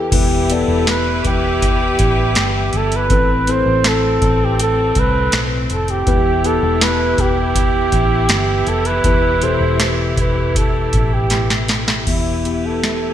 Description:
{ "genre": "pop ballad", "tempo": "81 BPM", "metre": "4/4", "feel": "straight", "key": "unclear", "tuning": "A4 = 439 Hz", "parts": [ { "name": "breathy flugelhorn", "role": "melody", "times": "0.0-13.1 s", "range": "E4 to C5", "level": "-19 LUFS", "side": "right 3 dB", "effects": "none" }, { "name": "mellow tine electric piano", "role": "accompaniment", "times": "0.0-13.1 s", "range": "A2 to D5", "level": "-21 LUFS", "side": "left 4 dB", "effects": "wide subtle chorus" }, { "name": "rich studio string section", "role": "sustained chords", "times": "0.0-13.1 s", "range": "E3 to B4", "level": "-25 LUFS", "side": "equal", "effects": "none" }, { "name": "vintage muted fingered electric bass", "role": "bass", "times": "0.1-13.1 s", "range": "E1 to C2", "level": "-20 LUFS", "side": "equal", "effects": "none" }, { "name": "booming analog drum machine", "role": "drums", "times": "0.1-13.0 s", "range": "crash cymbal, hi-hat, kick drum, snare drum", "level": "-19 LUFS", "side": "equal", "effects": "gated reverb" } ], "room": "moderate lush hall reverb, RT60 2.0 s", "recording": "bright 1980s-style digital production", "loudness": "-14 LUFS", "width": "side -10 dB against mid", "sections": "0.1-12.1 A section; 12.1-13.1 B section", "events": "drum fill 11.3-12.1", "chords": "0.1 Em; 3.1 Amadd9; 6.1 Em", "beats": "| 0.12 0.87 1.62 2.36 | 3.10 3.85 4.59 5.33 | 6.07 6.81 7.55 8.29 | 9.04 9.79 10.55 11.30 | 12.07 12.83" }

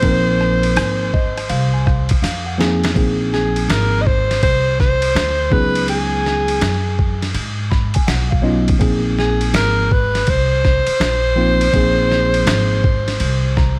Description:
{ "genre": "hip hop, jazz-hop", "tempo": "82 BPM", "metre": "4/4", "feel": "swing 65% on 16ths", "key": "Bb minor", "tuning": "A4 = 440 Hz", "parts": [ { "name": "breathy alto saxophone", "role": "melody", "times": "0.0-13.8 s", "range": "Ab4 to Eb5", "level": "-21 LUFS", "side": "equal", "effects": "none" }, { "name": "mellow tine electric piano", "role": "accompaniment", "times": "0.0-13.8 s", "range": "F3 to Cb6", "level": "-23 LUFS", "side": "equal", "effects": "none" }, { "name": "upright bass", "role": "bass", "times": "0.0-13.8 s", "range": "Ab1 to Ab2", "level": "-22 LUFS", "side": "equal", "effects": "none" }, { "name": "boom bap sampler-style drum kit", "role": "drums", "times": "0.0-13.8 s", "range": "hi-hat, kick drum, ride cymbal, rim click, snare drum", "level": "-22 LUFS", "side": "equal", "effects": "none" } ], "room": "light reverb", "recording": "vinyl crackle", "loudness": "-16 LUFS", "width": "mono", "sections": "0.0-3.0 A section; 3.0-13.8 A section", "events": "tine electric piano fill 0.8-3.0, 7.3-8.8, 13.2-13.8; drum fill 2.2-3.0", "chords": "0.0 Bb9sus4; 5.5 Db9sus4; 8.8 Bb9sus4", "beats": "| 0.03 0.76 1.49 2.22 | 2.96 3.69 4.42 5.15 | 5.88 6.61 7.34 8.08 | 8.81 9.54 10.27 11.00 | 11.73 12.47 13.20" }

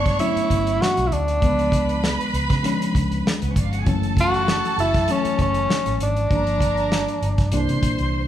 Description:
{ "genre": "lush 1970s-style soul", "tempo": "98 BPM", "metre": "4/4", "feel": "swing 54% on 16ths", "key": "unclear", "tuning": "A4 = 440 Hz", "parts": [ { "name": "breathy tenor saxophone", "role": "melody", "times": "0.0-7.8 s", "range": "C#4 to F#4", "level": "-22 LUFS", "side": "equal", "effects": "none" }, { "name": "rich studio violin section", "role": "second line", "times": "0.0-8.3 s", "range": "B3 to C#6", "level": "-29 LUFS", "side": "right 2 dB", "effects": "none" }, { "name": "reed electric piano", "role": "accompaniment", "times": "0.0-8.3 s", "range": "D3 to D4", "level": "-26 LUFS", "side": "left 2 dB", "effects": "none" }, { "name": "vintage muted fingered electric bass", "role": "bass", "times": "0.0-8.3 s", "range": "F#1 to C#3", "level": "-25 LUFS", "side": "equal", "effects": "none" }, { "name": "warm soul drum kit", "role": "drums", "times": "0.1-8.1 s", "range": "hi-hat, kick drum, snare drum", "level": "-24 LUFS", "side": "equal", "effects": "none" } ], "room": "moderate large studio reverb, RT60 1.3 s", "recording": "band playing live in one room", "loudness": "-18 LUFS", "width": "side -11 dB against mid", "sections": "0.0-8.3 A section", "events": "none", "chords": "0.0 Gmaj9; 1.4 C#7b9; 3.9 F#m7; 6.3 Gm7; 7.5 C9", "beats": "0.20 0.81 | 1.42 2.03 2.64 3.25 | 3.86 4.47 5.08 5.70 | 6.30 6.92 7.53 8.13" }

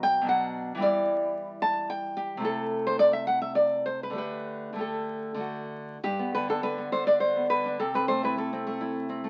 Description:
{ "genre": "romantic piece for solo classical guitar", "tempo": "93-114 BPM", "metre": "3/4", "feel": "rubato", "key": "G major", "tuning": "A4 = 444 Hz", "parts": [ { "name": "nylon-string guitar", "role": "solo", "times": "0.0-9.3 s", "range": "G2 to A5", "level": "-28 LUFS", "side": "equal", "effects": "none" } ], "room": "light reverb", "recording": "very old 78 rpm record, vinyl crackle", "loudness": "-28 LUFS", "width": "mono", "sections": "0.0-6.0 A section; 6.0-9.3 B section", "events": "none", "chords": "0.0 Bm; 0.8 Em7; 2.4 Am/C; 4.2 Dsus4; 5.4 D; 6.0 G; 7.8 Am/C", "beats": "0.31 | 0.84 1.37 1.90 | 2.44 3.00 3.57 | 4.19 4.82 5.43 | 6.03 6.62 7.20 | 7.79 8.38 8.95" }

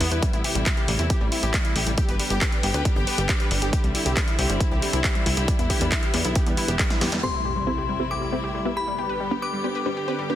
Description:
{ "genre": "uplifting trance", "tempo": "137 BPM", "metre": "4/4", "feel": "straight", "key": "A minor", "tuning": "A4 = 440 Hz", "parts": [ { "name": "rich chamber string section", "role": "sustained chords", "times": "0.0-10.4 s", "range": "C3 to G4", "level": "-30 LUFS", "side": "equal", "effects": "sidechain pumping" }, { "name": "wide unison pluck", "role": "arpeggios", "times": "0.0-10.4 s", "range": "G3 to B4", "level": "-30 LUFS", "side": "left 1 dB", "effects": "sidechain pumping, dub echo" }, { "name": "plucky analog bass", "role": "bass", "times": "0.0-7.2 s", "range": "E1 to E2", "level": "-26 LUFS", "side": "equal", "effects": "sidechain pumping" }, { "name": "punchy analog drum machine", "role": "drums", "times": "0.0-7.2 s", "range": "handclaps, hi-hat, snare drum", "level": "-27 LUFS", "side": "equal", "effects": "low-pass filter on hats, low-pass filter on snare, low-pass filter on room" }, { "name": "electronic kick drum", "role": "drums", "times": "0.2-6.9 s", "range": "none", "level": "-24 LUFS", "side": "equal", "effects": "overdrive" }, { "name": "wide unison pluck", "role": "melody", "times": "7.2-10.4 s", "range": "B3 to C5", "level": "-30 LUFS", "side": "right 1 dB", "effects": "sidechain pumping, dub echo" }, { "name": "glassy synth bell", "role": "second line", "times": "7.2-10.4 s", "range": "B5 to D6", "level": "-29 LUFS", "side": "left 6 dB", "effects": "chorus, dub echo" }, { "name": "impact", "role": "sound effects", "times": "7.2-9.0 s", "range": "none", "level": "-33 LUFS", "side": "equal", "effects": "none" } ], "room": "light reverb, digital ambience", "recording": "dense, heavily limited modern master", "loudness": "-21 LUFS", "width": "side -12 dB against mid", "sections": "0.0-7.2 A section; 7.2-10.4 B section", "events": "drum fill 6.9-7.2; band accent 7.1; impact 7.2-9.0; filter sweep on synth pluck 7.2-10.4", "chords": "0.2 Am7; 2.0 G; 3.7 Cadd9; 5.5 Em7; 7.2 Am7; 9.0 G", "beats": "| 0.23 0.66 1.10 1.54 | 1.98 2.42 2.85 3.29 | 3.73 4.17 4.61 5.04 | 5.48 5.92 6.36 6.79 | 7.23 7.67 8.11 8.55 | 8.98 9.42 9.86 10.30" }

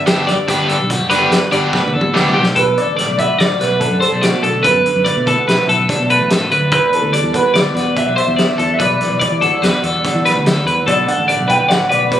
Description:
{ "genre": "math rock and midwest emo", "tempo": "144 BPM", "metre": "5/4", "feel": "straight", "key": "unclear", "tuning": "A4 = 440 Hz", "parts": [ { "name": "electric guitar through a small old amp", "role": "accompaniment", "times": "0.0-12.2 s", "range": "E2 to F#4", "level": "-22 LUFS", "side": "right 2 dB", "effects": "spring reverb" }, { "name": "twelve-string electric guitar", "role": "arpeggios", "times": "0.0-12.2 s", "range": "G4 to E5", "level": "-16 LUFS", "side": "left 1 dB", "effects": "spring reverb, analog delay" }, { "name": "fingered electric bass", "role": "bass", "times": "0.0-12.2 s", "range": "F#1 to E3", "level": "-21 LUFS", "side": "equal", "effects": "none" }, { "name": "overdriven electric guitar", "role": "riff", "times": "0.1-2.4 s", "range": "G3 to G4", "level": "-15 LUFS", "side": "equal", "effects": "none" }, { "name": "loose indie drum kit", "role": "drums", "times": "0.1-12.2 s", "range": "hi-hat, kick drum, snare drum, toms", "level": "-20 LUFS", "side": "equal", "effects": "none" }, { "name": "electric guitar through a small old amp", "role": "melody", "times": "2.6-12.2 s", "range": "F#4 to G5", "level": "-18 LUFS", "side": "right 1 dB", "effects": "spring reverb, analog delay" } ], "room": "light reverb", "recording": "recorded on a phone in the room, studio reverb, compression", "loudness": "-12 LUFS", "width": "side -11 dB against mid", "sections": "0.0-2.6 A section; 2.6-12.2 B section", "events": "drum fill 1.7-2.6", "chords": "0.0 Gmaj9; 2.6 Bm7; 6.7 Em9; 10.9 Bm7", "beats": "0.06 | 0.48 0.89 1.31 1.73 2.14 | 2.56 2.97 3.39 3.81 4.22 | 4.64 5.06 5.47 5.89 6.30 | 6.72 7.14 7.55 7.97 8.38 | 8.80 9.21 9.63 10.05 10.46 | 10.88 11.29 11.71 12.12" }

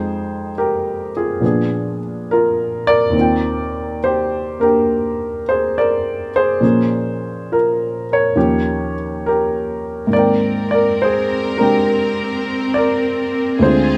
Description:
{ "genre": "jazz ballad", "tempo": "69 BPM", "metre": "4/4", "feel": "swing 67% on 8ths", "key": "unclear", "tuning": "A4 = 440 Hz", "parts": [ { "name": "warm baby grand piano", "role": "accompaniment", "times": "0.0-14.0 s", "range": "D2 to G5", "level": "-18 LUFS", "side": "equal", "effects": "none" }, { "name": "clear studio string section", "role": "sustained chords", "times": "10.1-14.0 s", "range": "D3 to Bb4", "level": "-24 LUFS", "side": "equal", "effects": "none" } ], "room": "moderate studio reverb, RT60 0.9 s", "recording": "none", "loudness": "-18 LUFS", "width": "mono", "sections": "0.0-14.0 A section", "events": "none", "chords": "0.0 Fm9; 1.4 Bb7b9; 3.1 Eb6; 6.6 Bbm7; 8.4 Eb9; 10.1 Abmaj9", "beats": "0.55 1.42 2.28 | 3.15 4.01 4.88 5.75 | 6.61 7.48 8.36 9.23 | 10.12 10.99 11.87 12.74 | 13.61" }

